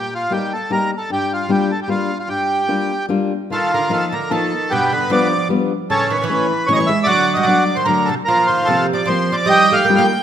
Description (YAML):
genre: musette waltz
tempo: 150 BPM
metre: 3/4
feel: swing 54% on 8ths, rubato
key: G minor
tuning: A4 = 441 Hz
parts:
  - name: accordion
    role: melody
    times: 0.0-10.2 s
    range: B3 to G5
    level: -16 LUFS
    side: right 1 dB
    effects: none
  - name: fingerpicked steel-string acoustic guitar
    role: accompaniment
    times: 0.0-10.1 s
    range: G2 to G4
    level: -21 LUFS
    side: left 5 dB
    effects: none
  - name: oud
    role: second line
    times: 3.5-10.2 s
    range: B2 to Bb3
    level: -22 LUFS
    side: right 7 dB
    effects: none
room: moderate scoring stage reverb, RT60 1.6 s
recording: minimal, uncompressed stereo recording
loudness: -15 LUFS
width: side -9 dB against mid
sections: 0.0-3.5 A section; 3.5-10.2 B section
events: none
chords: 0.0 Eb; 1.1 Gm7; 3.5 Ebsus2; 4.7 G7; 5.9 A; 7.1 D; 8.3 Bbsus2; 9.5 Ebadd9